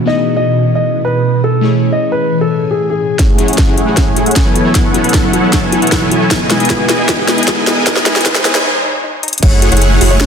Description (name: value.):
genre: future bass.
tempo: 154 BPM.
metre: 4/4.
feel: half-time.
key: F# dorian.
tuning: A4 = 436 Hz.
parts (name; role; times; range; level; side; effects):
glassy digital keys; accompaniment; 0.0-8.6 s; F#3 to D#5; -18 LUFS; left 3 dB; chorus, sidechain pumping, dub echo.
ethereal airy pad; sustained chords; 0.0-10.3 s; B2 to G#4; -18 LUFS; right 1 dB; ensemble chorus, built-in reverb, phaser, sidechain pumping.
downlifter and riser; sound effects; 0.0-0.1, 6.2-8.6 s; none; -24 LUFS; equal; none.
dark grand piano; melody; 0.1-3.2, 9.4-10.3 s; G#4 to D#5; -16 LUFS; left 1 dB; sidechain pumping, digital delay.
soft round pluck; arpeggios; 3.2-10.2 s; D#4 to D#5; -25 LUFS; left 3 dB; none.
dense compressed supersaw; riff; 3.2-10.3 s; A3 to G#5; -15 LUFS; equal; sidechain pumping, low-pass filter, dub echo.
electronic kick drum; drums; 3.2-9.5 s; none; -13 LUFS; equal; none.
trap drum kit; drums; 3.2-10.3 s; crash cymbal, hi-hat, snare drum; -16 LUFS; equal; low-pass filter on hats, low-pass filter on snare, low-pass filter on cymbals.
saturated sub bass; bass; 9.4-10.3 s; F#1; -12 LUFS; equal; tube saturation, sidechain pumping.
room: moderate lush hall reverb, RT60 1.8 s, digital ambience.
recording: dense, heavily limited modern master, high-pass filter.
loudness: -10 LUFS.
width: side -7 dB against mid.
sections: 0.0-3.2 A section; 3.2-9.4 B section.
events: filter sweep on ambient pad 0.0-3.2; build-up 3.2-9.4; drum fill 3.2-8.6, 9.2; filter sweep on supersaw synth 3.2-9.4; filter sweep 3.2-9.4; break 8.6-9.4.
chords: 0.1 Emaj7; 1.6 Amaj7; 3.2 F#m9; 4.6 B9sus4; 6.3 Emaj7; 7.9 Amaj7; 9.4 F#m9.